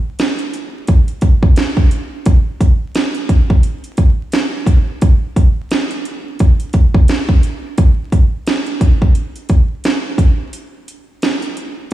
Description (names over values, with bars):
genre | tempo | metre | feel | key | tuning
hip hop | 87 BPM | 4/4 | swing 58% on 16ths | none | none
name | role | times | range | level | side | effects
house drum kit | drums | 0.2-11.9 s | hi-hat, kick drum, snare drum | -12 LUFS | equal | none
room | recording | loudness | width
light reverb | vinyl crackle, studio reverb | -12 LUFS | side -14 dB against mid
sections
0.0-11.9 A section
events
break 10.5-11.2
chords
none